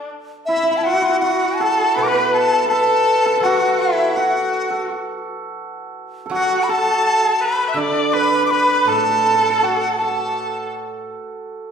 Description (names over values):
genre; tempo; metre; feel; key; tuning
chinese traditional, Chinese chamber ensemble; 82 BPM; 4/4; rubato; unclear; A4 = 440 Hz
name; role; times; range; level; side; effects
dizi; melody; 0.0-10.7 s; E5 to F#6; -19 LUFS; equal; none
clear erhu; second line; 0.0-10.7 s; E4 to E5; -21 LUFS; left 3 dB; none
hammered dulcimer; second line; 0.0-11.7 s; D4 to D5; -21 LUFS; right 2 dB; none
guzheng; accompaniment; 0.0-11.1 s; A2 to A4; -27 LUFS; right 5 dB; none
room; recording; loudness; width
wet recital hall reverb, RT60 1.3 s; recorded in a church or concert hall; -15 LUFS; side -7 dB against mid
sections
0.5-11.7 A section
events
none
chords
none